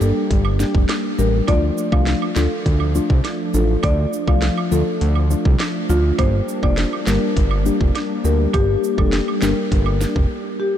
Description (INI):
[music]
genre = dancehall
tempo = 102 BPM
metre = 4/4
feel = straight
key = unclear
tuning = A4 = 442 Hz
[part]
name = marimba with medium mallets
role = melody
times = 0.0-10.7 s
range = F4 to F5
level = -25 LUFS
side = left 1 dB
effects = diffuse ambient delay
[part]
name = deep mellow chord stab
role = accompaniment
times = 0.0-10.2 s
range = F3 to G4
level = -24 LUFS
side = left 5 dB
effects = chorus
[part]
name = warm analog pad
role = sustained chords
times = 0.0-10.8 s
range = F3 to D4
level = -25 LUFS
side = equal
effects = chorus, sidechain pumping
[part]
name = fat analog bass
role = bass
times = 0.0-10.3 s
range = F1 to D2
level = -19 LUFS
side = equal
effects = none
[part]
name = cabasa and woodblock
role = percussion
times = 0.0-10.1 s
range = none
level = -33 LUFS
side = right 9 dB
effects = none
[part]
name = island pop drum kit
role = drums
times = 0.3-10.3 s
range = handclaps, hi-hat, kick drum, snare drum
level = -22 LUFS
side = equal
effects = vintage 12-bit sampler grit
[sound]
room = light reverb, digital ambience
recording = none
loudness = -16 LUFS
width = side -10 dB against mid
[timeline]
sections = 0.0-10.8 A section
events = break 10.3-10.8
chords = 0.0 Gm; 1.5 Dm; 6.2 Gm